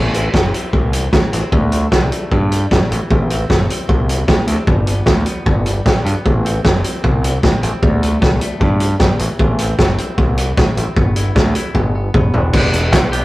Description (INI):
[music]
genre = indie rock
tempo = 152 BPM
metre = 4/4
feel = straight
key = A dorian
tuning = A4 = 440 Hz
[part]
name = twangy electric guitar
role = riff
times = 0.0-13.2 s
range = E3 to G4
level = -27 LUFS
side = left 2 dB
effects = none
[part]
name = growling picked electric bass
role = bass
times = 0.0-13.2 s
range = E1 to G2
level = -17 LUFS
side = equal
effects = overdrive
[part]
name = loose indie drum kit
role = drums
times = 0.1-13.2 s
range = crash cymbal, hi-hat, kick drum, snare drum, toms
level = -14 LUFS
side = equal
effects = none
[sound]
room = light reverb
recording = rough rehearsal-room recording, warm saturation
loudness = -13 LUFS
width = side -18 dB against mid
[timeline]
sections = 0.0-12.5 A section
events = drum fill 11.8-12.5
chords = 0.0 Am; 1.5 Dsus4; 2.9 Am; 4.7 G; 6.3 Am; 7.8 Dsus4; 9.2 Am; 11.0 Em/G; 11.8 G; 12.5 Em7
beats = 0.34 0.73 1.13 | 1.52 1.92 2.31 2.71 | 3.10 3.50 3.89 4.29 | 4.68 5.07 5.47 5.86 | 6.25 6.65 7.04 7.43 | 7.83 8.22 8.62 9.01 | 9.40 9.79 10.19 10.58 | 10.97 11.36 11.76 12.15 | 12.54 12.93